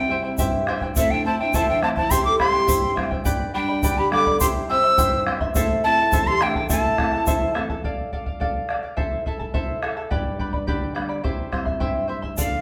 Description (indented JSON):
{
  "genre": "andean folk, Andean ensemble",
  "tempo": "105 BPM",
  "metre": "2/4",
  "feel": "straight",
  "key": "unclear",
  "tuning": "A4 = 440 Hz",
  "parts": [
    { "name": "bright large quena", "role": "melody", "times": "0.0-7.5, 12.4-12.6 s", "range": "E5 to E6", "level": "-23 LUFS", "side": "equal", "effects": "none" },
    { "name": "breathy mellow pan flute", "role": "second line", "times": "0.0-7.5, 12.4-12.6 s", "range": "C4 to D5", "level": "-30 LUFS", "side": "equal", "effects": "none" },
    { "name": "charango", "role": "accompaniment", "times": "0.0-12.6 s", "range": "E4 to C6", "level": "-29 LUFS", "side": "equal", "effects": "none" },
    { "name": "nylon-string guitar", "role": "accompaniment", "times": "0.0-7.8, 10.1-12.6 s", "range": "E2 to E4", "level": "-31 LUFS", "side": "equal", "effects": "none" },
    { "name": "bombo", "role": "percussion", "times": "0.4-12.5 s", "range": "none", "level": "-28 LUFS", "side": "equal", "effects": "none" },
    { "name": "egg shaker", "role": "percussion", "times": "0.4-7.4, 12.4-12.5 s", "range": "none", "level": "-32 LUFS", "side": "equal", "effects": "none" }
  ],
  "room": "wet large studio reverb, RT60 1.3 s",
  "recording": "band playing live in one room",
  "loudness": "-22 LUFS",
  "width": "mono",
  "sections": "0.0-7.8 A section; 7.8-12.4 B section",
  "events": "none",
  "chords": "0.0 C; 1.0 Am; 2.1 C; 3.3 G; 4.4 C; 5.6 Am; 7.8 Dm; 9.0 Am; 10.1 G; 11.2 C"
}